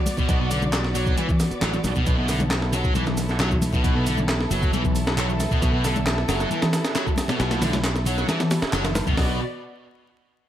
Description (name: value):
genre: breakbeat, breaks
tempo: 135 BPM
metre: 4/4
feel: straight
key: unclear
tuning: A4 = 440 Hz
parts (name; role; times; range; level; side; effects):
- muted studio string section; sustained chords; 0.0-9.4 s; B3 to D5; -30 LUFS; equal; sidechain pumping
- breakbeat sampler-style drum kit; drums; 0.1-9.3 s; hi-hat, kick drum, snare drum; -24 LUFS; equal; none
- house drum kit; drums; 0.1-9.2 s; handclaps, hi-hat, shaker; -32 LUFS; right 1 dB; none
- congas; percussion; 0.1-9.0 s; none; -31 LUFS; left 2 dB; none
- thick fuzz guitar; riff; 0.2-9.4 s; B2 to F#3; -26 LUFS; equal; distortion, ping-pong delay
- modern bright fingered electric bass; bass; 0.3-9.4 s; F#1 to B1; -25 LUFS; equal; none
room: little or no reverb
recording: vinyl crackle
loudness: -20 LUFS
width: side -11 dB against mid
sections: 0.0-9.2 A section; 9.2-10.5 B section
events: drop 0.0-9.2; band accent 8.7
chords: 0.0 Bm